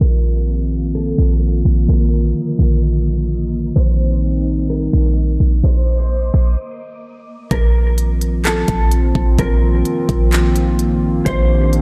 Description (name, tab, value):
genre	hip hop, atmospheric cloud-rap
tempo	128 BPM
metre	4/4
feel	half-time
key	unclear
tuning	A4 = 441 Hz
part	mellow electric guitar	melody	0.0-11.7 s	A4 to C5	-28 LUFS	equal	lush chorus, delay
part	dark analog pad	sustained chords	0.0-11.8 s	D3 to G4	-22 LUFS	equal	subtle chorus, sidechain pumping
part	warm 808-style bass	bass	0.0-11.8 s	Bb1	-17 LUFS	equal	none
part	wind-like tuned noise texture	texture	0.0-7.5 s	Bb3 to Eb6	-39 LUFS	equal	built-in reverb, analog chorus
part	trap drum kit	drums	7.5-11.8 s	handclaps, hi-hat, kick drum	-23 LUFS	equal	none
room	moderate lush hall reverb, RT60 1.9 s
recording	dreamy mix soaked in reverb, low-pass filter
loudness	-16 LUFS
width	mono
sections	0.0-7.5 A section; 7.5-11.8 B section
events	filter sweep 0.0-7.5; stop 6.6-7.5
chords	0.0 F7sus4/Bb; 3.8 Cm9/Bb; 7.5 F7sus4/Bb; 11.3 Cm9/Bb